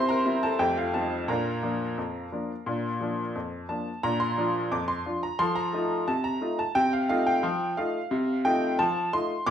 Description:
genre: ragtime piano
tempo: 88 BPM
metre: 2/4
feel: straight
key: Bb major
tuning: A4 = 439 Hz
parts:
  - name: bright upright piano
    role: solo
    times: 0.0-9.5 s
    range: F2 to D6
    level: -25 LUFS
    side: equal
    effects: none
room: moderate large studio reverb, RT60 0.7 s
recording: band playing live in one room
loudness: -25 LUFS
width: side -9 dB against mid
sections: 0.0-4.0 A section; 4.0-9.5 A section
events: none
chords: 0.0 C7; 0.6 F7; 1.3 Bb; 5.4 F7/C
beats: 0.60 | 1.28 1.97 | 2.66 3.35 | 4.04 4.72 | 5.40 6.08 | 6.76 7.44 | 8.12 8.79 | 9.47

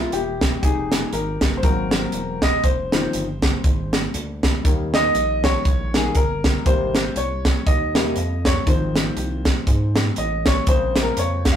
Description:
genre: uptempo gospel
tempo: 120 BPM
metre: 4/4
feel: swing 58% on 8ths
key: Ab major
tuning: A4 = 440 Hz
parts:
  - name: clear grand piano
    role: accompaniment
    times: 0.0-11.6 s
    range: C3 to F5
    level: -23 LUFS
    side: left 2 dB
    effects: none
  - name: rubbery square bass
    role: bass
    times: 0.0-11.6 s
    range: E1 to Ab2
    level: -26 LUFS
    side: equal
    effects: none
  - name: crisp fusion drum kit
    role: drums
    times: 0.1-11.6 s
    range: hi-hat, kick drum, snare drum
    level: -20 LUFS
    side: equal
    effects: none
room: moderate studio reverb, RT60 0.7 s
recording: rough rehearsal-room recording, tube saturation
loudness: -18 LUFS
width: side -9 dB against mid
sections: 0.0-11.6 A section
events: grand piano solo 0.0-11.6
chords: 0.0 C7b13 (rootless); 0.6 Fm7; 1.6 Ab9; 2.6 Fm13; 4.6 Eb; 6.7 Abmaj7; 8.7 Ab6; 10.7 Bbm7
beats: 0.13 | 0.63 1.13 1.64 2.14 | 2.64 3.14 3.65 4.15 | 4.65 5.15 5.65 6.16 | 6.66 7.16 7.66 8.16 | 8.67 9.17 9.67 10.17 | 10.67 11.17

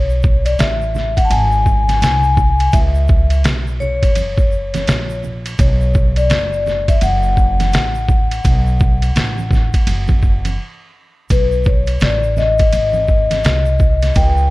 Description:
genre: hip hop, jazz-hop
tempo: 84 BPM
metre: 4/4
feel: swing 61% on 16ths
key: unclear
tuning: A4 = 441 Hz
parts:
  - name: vibraphone with soft mallets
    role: accompaniment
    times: 0.0-14.5 s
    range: B4 to A5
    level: -19 LUFS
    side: left 3 dB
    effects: none
  - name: upright bass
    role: bass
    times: 0.0-14.5 s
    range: F#1 to C#2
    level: -17 LUFS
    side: equal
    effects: none
  - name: tube shaker and congas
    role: percussion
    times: 0.1-14.5 s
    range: none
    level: -30 LUFS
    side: right 6 dB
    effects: none
  - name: trip hop sampler-style drum kit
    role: drums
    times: 0.2-14.4 s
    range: hi-hat, kick drum, ride cymbal, snare drum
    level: -16 LUFS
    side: equal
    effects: none
room: small room ambience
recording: none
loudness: -12 LUFS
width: side -19 dB against mid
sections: 0.0-11.3 A section; 11.3-14.5 B section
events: vibraphone solo 0.0-11.3, 11.3-14.5; break 10.6-11.3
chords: 0.0 Aadd9; 1.3 G#; 2.7 Bsus24; 4.2 F#; 5.6 Bm7; 11.3 Aadd9; 12.7 G#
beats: 0.59 1.30 2.02 | 2.73 3.45 4.16 4.88 | 5.59 6.30 7.02 7.73 | 8.45 9.16 9.88 10.59 | 11.30 12.02 12.73 13.45 | 14.16

